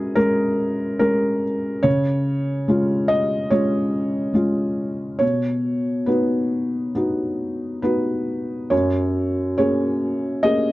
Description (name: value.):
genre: neoclassical minimalist piano.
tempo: 71 BPM.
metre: 4/4.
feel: rubato.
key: F# major.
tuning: A4 = 440 Hz.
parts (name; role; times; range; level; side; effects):
felt-muted upright piano; solo; 0.0-10.7 s; F#2 to D#5; -19 LUFS; equal; none.
room: light reverb.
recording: dry, close 1970s-style studio recording.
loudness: -19 LUFS.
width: side -18 dB against mid.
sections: 0.0-10.7 A section.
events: none.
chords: 0.0 F#add9; 1.8 C#; 5.2 B; 8.7 F#add9.